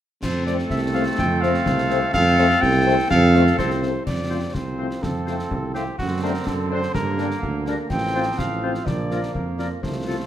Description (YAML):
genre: military-style march for wind band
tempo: 125 BPM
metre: 2/4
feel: straight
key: F major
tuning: A4 = 439 Hz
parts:
  - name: mellow cornet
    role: melody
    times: 0.2-10.3 s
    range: F#4 to G5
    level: -25 LUFS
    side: equal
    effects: none
  - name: warm woodwind section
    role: second line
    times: 0.2-10.2 s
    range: C4 to C5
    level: -26 LUFS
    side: left 2 dB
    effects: none
  - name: bright trombone section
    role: sustained chords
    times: 0.2-10.3 s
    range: D3 to C4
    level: -30 LUFS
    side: right 2 dB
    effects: none
  - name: dark tuba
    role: bass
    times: 0.2-10.2 s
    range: A1 to G2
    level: -23 LUFS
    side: right 2 dB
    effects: none
  - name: concert snare drum, clash cymbals and concert bass drum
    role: drums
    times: 0.2-10.3 s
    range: none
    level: -30 LUFS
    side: left 1 dB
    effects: none
  - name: warm French horn section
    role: accompaniment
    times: 0.5-10.2 s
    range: F3 to C5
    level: -28 LUFS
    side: left 7 dB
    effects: none
room: moderate recital hall reverb, RT60 1.5 s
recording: none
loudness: -19 LUFS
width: side -11 dB against mid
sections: 0.2-4.1 A section; 4.1-10.3 B section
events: none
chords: 0.2 F; 6.0 D7/F#; 6.9 Gm; 7.9 F/A; 8.9 Bb